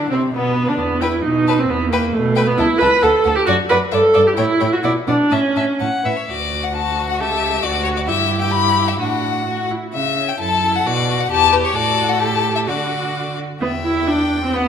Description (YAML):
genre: quick classical-period movement for string quartet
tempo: 122-138 BPM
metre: 2/4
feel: rubato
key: D major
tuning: A4 = 440 Hz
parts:
  - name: clear violin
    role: melody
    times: 0.0-14.7 s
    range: B3 to B5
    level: -21 LUFS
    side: left 9 dB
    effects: none
  - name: rich viola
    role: accompaniment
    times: 0.0-14.7 s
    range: A3 to B4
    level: -18 LUFS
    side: right 2 dB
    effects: none
  - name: rich cello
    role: bass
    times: 0.0-14.7 s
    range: C#2 to D3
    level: -23 LUFS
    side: right 4 dB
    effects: none
  - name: rich violin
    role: second line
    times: 0.1-14.7 s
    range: B3 to G5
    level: -23 LUFS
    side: left 2 dB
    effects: none
room: wet recital hall reverb, RT60 1.8 s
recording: lossy compression artefacts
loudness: -15 LUFS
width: side -8 dB against mid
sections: 0.0-6.3 A section; 6.3-13.6 B section; 13.6-14.7 C section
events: none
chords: 0.0 Bm; 0.8 Em; 1.2 B7; 1.7 Em; 2.6 A/C#; 3.0 D; 3.5 D/F#; 3.9 Em7/G (rootless); 4.4 A; 4.8 Bm; 5.3 A; 6.3 D; 7.2 A7/C#; 7.6 D; 8.1 Em/G; 9.0 D/A; 9.5 A5; 9.9 C#dim; 10.4 F#m7; 10.9 Bm; 11.3 Em; 11.8 D/A; 12.2 Emadd11/A (rootless); 12.7 D; 13.6 Em